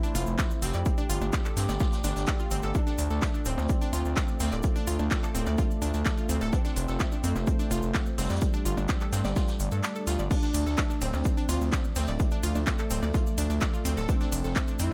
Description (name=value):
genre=melodic techno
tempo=127 BPM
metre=4/4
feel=straight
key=D minor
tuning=A4 = 440 Hz
part: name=expressive portamento lead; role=melody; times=0.0-14.9 s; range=G3 to G4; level=-37 LUFS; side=equal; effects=lush chorus, sidechain pumping, tape echo
part: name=dark analog pad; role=sustained chords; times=0.0-14.9 s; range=F3 to D5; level=-42 LUFS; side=equal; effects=chorus, sidechain pumping
part: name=analog pluck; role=arpeggios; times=0.0-14.9 s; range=A3 to D5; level=-38 LUFS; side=equal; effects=chorus, sidechain pumping, tape echo
part: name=street-band drum kit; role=drums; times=0.0-14.9 s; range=hi-hat, shaker, snare drum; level=-47 LUFS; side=equal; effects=high-pass filter on hats, high-pass filter on snare, high-pass filter on perc, high-pass filter on room, analog delay
part: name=cabasa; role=percussion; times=0.0-14.9 s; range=none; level=-46 LUFS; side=equal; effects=none
part: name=techno drum kit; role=drums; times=0.1-14.9 s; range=crash cymbal, handclaps, hi-hat, percussion blips, ride cymbal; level=-37 LUFS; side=equal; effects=analog delay
part: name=gritty driven synth bass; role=bass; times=0.2-14.9 s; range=D1 to G2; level=-32 LUFS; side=equal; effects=sidechain pumping
part: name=electronic kick drum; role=drums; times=0.4-14.7 s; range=none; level=-30 LUFS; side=equal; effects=none
room=digital ambience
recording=echo-heavy mix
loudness=-28 LUFS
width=mono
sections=0.0-14.9 A section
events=kick drops out 9.8-10.3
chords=0.0 F; 0.9 Gsus2; 2.7 Dm; 6.5 F; 8.4 Gsus2; 10.3 Dm; 14.1 F